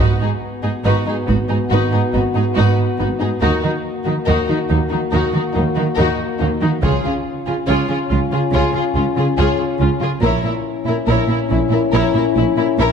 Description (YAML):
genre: cinematic, epic orchestral film score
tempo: 70 BPM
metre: 4/4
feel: straight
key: G# minor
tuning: A4 = 440 Hz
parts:
  - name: rich symphonic violin section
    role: melody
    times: 0.0-12.9 s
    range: D#4 to C#5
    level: -26 LUFS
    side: left 6 dB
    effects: none
  - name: warm symphonic violin section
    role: second line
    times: 0.0-12.9 s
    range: A#3 to A#4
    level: -25 LUFS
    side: left 4 dB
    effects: none
  - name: warm symphonic viola section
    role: accompaniment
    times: 0.0-12.9 s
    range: D#4 to E#4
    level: -25 LUFS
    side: right 2 dB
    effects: none
  - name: mellow French horn section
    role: sustained chords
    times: 0.0-12.9 s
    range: A#3 to F#4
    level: -21 LUFS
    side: left 6 dB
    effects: none
  - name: clear studio double bass section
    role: bass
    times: 0.0-12.9 s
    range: G#1 to D#2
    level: -21 LUFS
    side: right 3 dB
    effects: none
  - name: warm symphonic cello section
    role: bass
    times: 0.0-12.9 s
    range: G#2 to D#3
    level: -21 LUFS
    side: right 3 dB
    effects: none
  - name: taiko ensemble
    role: drums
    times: 1.3-1.7, 6.8-8.5 s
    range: none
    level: -22 LUFS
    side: equal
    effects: none
room: moderate scoring stage reverb, RT60 2.0 s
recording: dark, warm production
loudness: -15 LUFS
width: side -7 dB against mid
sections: 0.0-12.9 A section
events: none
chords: 0.0 G#m7; 3.4 D#m; 6.8 C#; 10.2 A#dim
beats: | 0.00 0.85 1.71 2.56 | 3.42 4.27 5.13 5.98 | 6.83 7.68 8.54 9.39 | 10.24 11.09 11.94 12.78